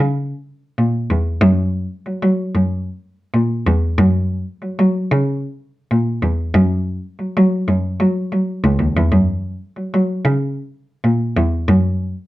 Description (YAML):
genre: funk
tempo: 94 BPM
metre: 4/4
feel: straight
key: F# mixolydian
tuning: A4 = 440 Hz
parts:
  - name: clear cello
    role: solo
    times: 0.0-12.1 s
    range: C#2 to F#3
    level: -15 LUFS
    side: equal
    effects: none
room: light reverb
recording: dark, warm production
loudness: -16 LUFS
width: side -17 dB against mid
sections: 0.0-12.3 A section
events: none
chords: none